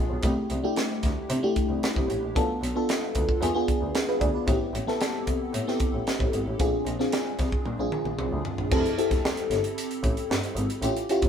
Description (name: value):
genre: polished 1980s jazz-funk pop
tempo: 113 BPM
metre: 4/4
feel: straight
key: unclear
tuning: A4 = 439 Hz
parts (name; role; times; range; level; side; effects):
- FM electric piano with soft pad layer; accompaniment; 0.0-11.3 s; A3 to D5; -27 LUFS; left 1 dB; chorus, phaser
- clear double bass; bass; 0.0-11.3 s; E1 to C3; -31 LUFS; equal; none
- crisp fusion drum kit; drums; 0.2-11.3 s; crash cymbal, hi-hat, kick drum, snare drum, toms; -28 LUFS; equal; none
room: light reverb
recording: band playing live in one room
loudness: -24 LUFS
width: side -8 dB against mid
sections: 0.0-8.7 A section; 8.7-11.3 B section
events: drum fill 7.7-8.7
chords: 0.2 C69; 2.4 Bm7b5; 3.4 E7b9 (rootless); 4.5 Am7; 6.6 Bb9; 8.7 Fmaj9 (rootless)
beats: | 0.24 0.77 1.30 1.83 | 2.36 2.89 3.42 3.95 | 4.47 5.00 5.54 6.07 | 6.59 7.12 7.66 8.19 | 8.71 9.24 9.78 10.30 | 10.83